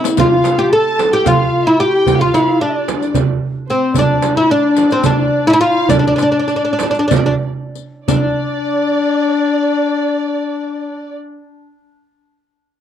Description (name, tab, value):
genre	Turkish makam ensemble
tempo	178-222 BPM (eighths)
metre	7/8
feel	straight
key	D makam ussak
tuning	A4 = 438 Hz
part	oud	melody	0.0-11.1 s	C4 to A4	-15 LUFS	right 1 dB	none
part	darbuka	percussion	0.0-8.4 s	none	-19 LUFS	right 4 dB	none
part	riq	percussion	0.0-8.4 s	none	-23 LUFS	left 22 dB	none
part	dark studio violin section	second line	0.2-11.1 s	C5 to A5	-21 LUFS	right 3 dB	none
part	mellow clarinet	second line	0.2-11.1 s	C4 to A4	-18 LUFS	left 7 dB	tape echo
part	frame drum	percussion	0.2-8.4 s	none	-22 LUFS	right 10 dB	none
room	little or no reverb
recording	dry, close 1970s-style studio recording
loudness	-12 LUFS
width	side -9 dB against mid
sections	0.0-8.1 A section; 8.1-12.8 B section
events	drum fill 0.0; slowing down 4.0-8.1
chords	none